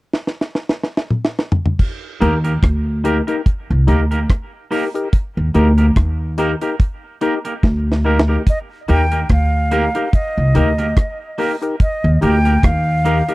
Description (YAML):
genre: roots reggae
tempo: 72 BPM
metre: 4/4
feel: swing 56% on 16ths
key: Eb major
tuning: A4 = 444 Hz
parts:
  - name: deep reggae drum kit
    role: drums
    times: 0.1-13.3 s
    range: crash cymbal, hi-hat, kick drum, rim click, snare drum, toms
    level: -16 LUFS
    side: equal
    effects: none
  - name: clean electric guitar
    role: accompaniment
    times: 2.2-13.3 s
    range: Bb3 to Bb4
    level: -24 LUFS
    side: right 2 dB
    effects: tape echo
  - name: percussive organ stab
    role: stabs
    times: 2.2-13.3 s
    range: Eb4 to Bb4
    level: -20 LUFS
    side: left 3 dB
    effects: chorus
  - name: upright bass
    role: bass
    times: 2.2-13.2 s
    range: C2 to Eb2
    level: -15 LUFS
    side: equal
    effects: tube saturation
  - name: mellow jazz flute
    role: melody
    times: 8.5-13.3 s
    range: Eb5 to G5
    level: -21 LUFS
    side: equal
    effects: tape echo
room: little or no reverb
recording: dry, close 1970s-style studio recording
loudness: -14 LUFS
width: side -19 dB against mid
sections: 0.0-1.8 A section; 1.8-8.5 B section; 8.5-13.3 C section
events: drum fill 0.1-1.8, 7.6-8.5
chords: 0.0 N.C.; 1.8 Eb